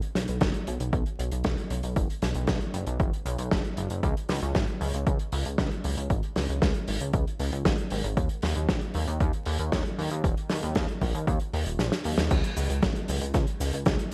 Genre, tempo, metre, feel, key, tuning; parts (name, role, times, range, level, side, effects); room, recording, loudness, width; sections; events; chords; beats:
italo disco; 116 BPM; 4/4; straight; A4 = 441 Hz
warm soul drum kit; drums; 0.0-14.1 s; cabasa, crash cymbal, hi-hat, snare drum; -33 LUFS; equal; gated reverb
chorused synth bass; bass; 0.2-14.1 s; D#1 to D#2; -32 LUFS; equal; tape echo
electronic kick drum; drums; 0.4-14.0 s; -30 LUFS; equal; overdrive
little or no reverb; vinyl crackle; -28 LUFS; mono
0.0-12.3 A section; 12.3-14.1 B section
kick drops out 11.8-12.3; drum fill 11.8-12.3; band accent 12.2
0.41 0.93 1.45 | 1.96 2.48 3.00 3.52 | 4.03 4.55 5.07 5.58 | 6.10 6.62 7.14 7.65 | 8.17 8.69 9.21 9.72 | 10.24 10.76 11.27 11.79 | 12.31 12.83 13.34 13.86